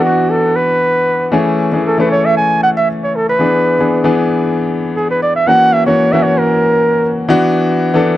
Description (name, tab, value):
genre	disco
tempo	116 BPM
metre	4/4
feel	straight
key	unclear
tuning	A4 = 444 Hz
part	warm flugelhorn	melody	0.0-7.2 s	F#4 to G#5	-12 LUFS	right 1 dB	none
part	clear baby grand piano	accompaniment	0.0-8.2 s	E3 to A4	-14 LUFS	left 2 dB	none
room	little or no reverb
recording	dry, close 1970s-style studio recording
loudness	-11 LUFS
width	side -14 dB against mid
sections	0.0-8.2 A section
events	flugelhorn solo 0.0-8.2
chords	0.0 D69; 1.3 Amaj7; 3.4 E7; 5.5 F#7; 7.3 D69